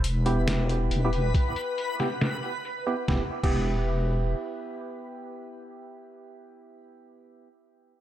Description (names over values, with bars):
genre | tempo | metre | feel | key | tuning
deep dubstep | 138 BPM | 4/4 | swing 62% on 16ths, half-time | E minor | A4 = 441 Hz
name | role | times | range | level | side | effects
deep soft wobble bass | bass | 0.0-4.3 s | E1 | -26 LUFS | equal | chorus
trip hop sampler-style drum kit | drums | 0.0-3.5 s | crash cymbal, hi-hat, snare drum | -32 LUFS | equal | low-pass filter on hats, low-pass filter on cymbals, low-pass filter on snare, low-pass filter on toms, low-pass filter on room
backwards swelling texture | texture | 0.1-3.1 s | B4 | -35 LUFS | left 2 dB | built-in reverb, lush chorus
percussive organ stab | stabs | 0.3-7.5 s | B3 to G4 | -32 LUFS | right 2 dB | wide subtle chorus, dub echo
electronic kick drum | drums | 1.3-3.5 s | none | -26 LUFS | equal | none
room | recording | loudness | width
light reverb, digital ambience | none | -24 LUFS | side -12 dB against mid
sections
0.0-3.1 A section; 3.1-6.6 B section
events
none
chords
0.0 Em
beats
0.04 0.47 0.91 | 1.34 1.78 2.21 2.65 | 3.08 3.52 3.95 4.39 | 4.82 5.26 5.69 6.13